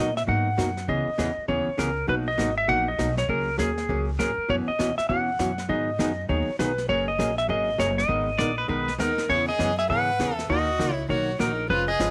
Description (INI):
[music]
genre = country, western swing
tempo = 200 BPM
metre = 4/4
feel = swing 62% on 8ths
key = unclear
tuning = A4 = 440 Hz
[part]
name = clean lap steel guitar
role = melody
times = 0.0-12.1 s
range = G#4 to F#5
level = -28 LUFS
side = equal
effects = none
[part]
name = hollow-body jazz guitar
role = accompaniment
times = 0.0-12.1 s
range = B2 to B4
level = -31 LUFS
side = equal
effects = none
[part]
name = upright bass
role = bass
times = 0.0-12.1 s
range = E#1 to A#2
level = -33 LUFS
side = equal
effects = none
[part]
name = vintage brush drum kit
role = drums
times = 0.2-12.1 s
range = brushed snare drum, hi-hat, kick drum, snare drum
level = -39 LUFS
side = equal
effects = none
[part]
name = pedal steel guitar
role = second line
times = 8.4-8.9 s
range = B4 to D5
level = -31 LUFS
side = equal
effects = none
[part]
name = clear fiddle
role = second line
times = 9.0-12.1 s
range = D#4 to B4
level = -33 LUFS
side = equal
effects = none
[sound]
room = light reverb, small room ambience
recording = none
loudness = -25 LUFS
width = mono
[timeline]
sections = 0.0-12.1 A section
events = none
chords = 0.0 Bmaj7; 0.9 C#m7; 2.1 Bmaj7; 3.3 F#add9; 4.5 F#7sus4; 5.7 G#m7; 6.9 F#add9; 8.1 G#madd9; 9.3 C#m7; 10.5 D#m